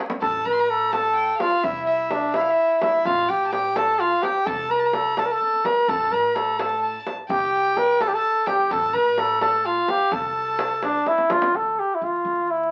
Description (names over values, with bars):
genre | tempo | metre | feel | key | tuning
Persian modal ensemble | 85 BPM (dotted quarters) | 6/8 | straight | A dastgah shur | A4 = 440 Hz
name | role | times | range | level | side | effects
tombak | percussion | 0.1-11.5 s | none | -33 LUFS | equal | none
warm flugelhorn | melody | 0.2-12.7 s | D4 to Bb4+50c | -22 LUFS | equal | none
warm violin | second line | 0.2-11.1 s | E5 to C6 | -30 LUFS | equal | none
upright bass | bass | 0.2-12.7 s | G1 to A2 | -44 LUFS | equal | none
room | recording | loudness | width
wet studio reverb, RT60 0.6 s | very old 78 rpm record, vinyl crackle | -22 LUFS | mono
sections
0.2-11.5 A section; 11.5-12.7 B section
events
drum fill 0.0, 11.1-11.5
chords
none